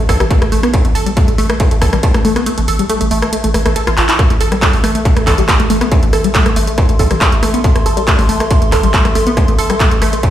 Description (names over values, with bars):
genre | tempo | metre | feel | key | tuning
driving peak-time techno | 139 BPM | 4/4 | straight | A minor | A4 = 440 Hz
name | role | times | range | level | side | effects
tight sequenced synth | riff | 0.0-10.3 s | G3 to A4 | -16 LUFS | equal | chorus, phaser, tube saturation, sidechain pumping, dub echo
saturated sub bass | bass | 0.0-10.1 s | A1 | -18 LUFS | equal | overdrive, sidechain pumping, low-pass filter
electronic kick drum | drums | 0.1-10.3 s | none | -13 LUFS | equal | distortion, overdrive
techno drum kit | drums | 0.1-10.3 s | handclaps, hi-hat, rim click | -18 LUFS | equal | overdrive
warbly tape-like pad | texture | 4.2-10.3 s | A4 to C6 | -22 LUFS | left 1 dB | chorus, built-in reverb, sidechain pumping
room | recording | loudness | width
light reverb | played on a big sound system in a bare room, stone room reverb | -10 LUFS | side -12 dB against mid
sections
0.0-4.2 A section; 4.2-10.3 B section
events
kick drops out 2.5-4.2; drum fill 4.0; drop 4.2-10.3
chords
0.0 A5; 4.2 Am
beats
0.30 | 0.74 1.17 1.60 2.03 | 2.46 2.90 3.33 3.76 | 4.19 4.62 5.05 5.49 | 5.92 6.35 6.78 7.21 | 7.64 8.07 8.51 8.94 | 9.37 9.80 10.23